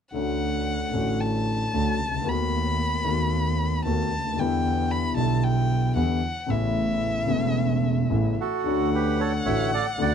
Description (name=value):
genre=tango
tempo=113 BPM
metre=4/4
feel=rubato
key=D major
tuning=A4 = 440 Hz
part: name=warm violin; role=second line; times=0.1-10.1 s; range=E5 to B5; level=-29 LUFS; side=left 2 dB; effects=none
part: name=warm concert grand piano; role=accompaniment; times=0.1-10.1 s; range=E1 to F#4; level=-26 LUFS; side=left 3 dB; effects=none
part: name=dark double bass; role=bass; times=0.1-10.1 s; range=E1 to E2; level=-27 LUFS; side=right 4 dB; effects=none
part: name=bandoneon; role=melody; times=8.4-10.1 s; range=F#4 to F#5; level=-26 LUFS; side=right 7 dB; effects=slapback echo
room=light reverb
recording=dark, warm production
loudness=-22 LUFS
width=side -7 dB against mid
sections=0.1-8.7 A section; 8.7-10.1 B section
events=none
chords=0.1 Dmaj7; 2.3 B7/D#; 4.4 Em7; 6.5 Aadd9; 8.7 Dmaj7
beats=| 0.14 0.68 1.21 1.74 | 2.27 2.80 3.32 3.85 | 4.38 4.91 5.44 5.96 | 6.49 7.03 7.56 8.11 | 8.65 9.19 9.73